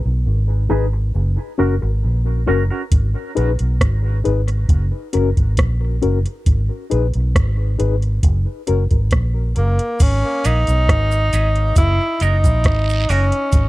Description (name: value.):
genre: dub reggae.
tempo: 68 BPM.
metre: 4/4.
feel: straight.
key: G# minor.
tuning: A4 = 440 Hz.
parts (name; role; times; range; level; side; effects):
vintage muted fingered electric bass; bass; 0.0-13.7 s; F#1 to B1; -17 LUFS; equal; none.
semi-hollow electric guitar; accompaniment; 0.7-2.8, 10.4-13.2 s; C#4 to B4; -27 LUFS; right 4 dB; high-pass filter, low-pass filter, tape echo.
mellow reed electric piano; stabs; 0.7-13.2 s; C#4 to B4; -24 LUFS; left 7 dB; fast tremolo, high-pass filter, low-pass filter, tape echo.
soft vintage rhythm box; drums; 2.9-13.7 s; crash cymbal, hi-hat, kick drum, rim click; -17 LUFS; equal; none.
warm tenor saxophone; melody; 9.6-13.7 s; A#3 to E4; -20 LUFS; equal; tape echo.
cabasa and guiro; percussion; 10.0-13.7 s; none; -32 LUFS; right 7 dB; high-pass filter on perc, tape echo.
room: little or no reverb.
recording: dry, close 1970s-style studio recording.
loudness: -15 LUFS.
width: side -18 dB against mid.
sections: 0.0-10.0 A section; 10.0-13.7 B section.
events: break 0.0-2.9; filter sweep 0.0-13.5.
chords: 0.0 G#m; 1.1 F#; 2.9 G#m; 4.7 F#; 6.5 G#m; 8.2 F#; 10.0 G#m; 11.8 F#.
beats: 0.26 1.14 2.03 | 2.92 3.80 4.69 5.58 | 6.46 7.35 8.23 9.12 | 10.00 10.89 11.77 12.65 | 13.53.